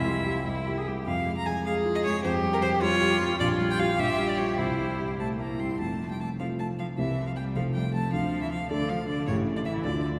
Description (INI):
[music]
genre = quick classical-period movement for piano trio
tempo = 103 BPM (dotted quarters)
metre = 6/8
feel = rubato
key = F major from 3.4 s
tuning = A4 = 440 Hz
[part]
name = rich violin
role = melody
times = 0.0-10.0 s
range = Bb4 to C6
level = -34 LUFS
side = equal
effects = none
[part]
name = rich cello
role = second line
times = 0.0-10.0 s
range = C#3 to Ab4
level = -33 LUFS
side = equal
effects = none
[part]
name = dark grand piano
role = accompaniment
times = 0.0-10.2 s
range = F1 to A4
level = -31 LUFS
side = equal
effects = none
[sound]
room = wet cathedral reverb, RT60 4.9 s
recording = recorded in a church or concert hall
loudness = -28 LUFS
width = mono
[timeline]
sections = 0.0-5.8 A section; 5.8-10.2 B section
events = none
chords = 0.0 C; 1.1 Fm; 2.2 Bbm6/F (rootless); 3.4 Gm7/Bb; 4.6 C; 5.8 F; 7.0 C7; 7.6 F; 8.1 D5; 9.3 A7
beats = 0.47 | 1.07 1.66 | 2.25 2.83 | 3.41 3.99 | 4.58 5.19 | 5.80 6.40 | 6.98 7.56 | 8.14 8.71 | 9.28 9.85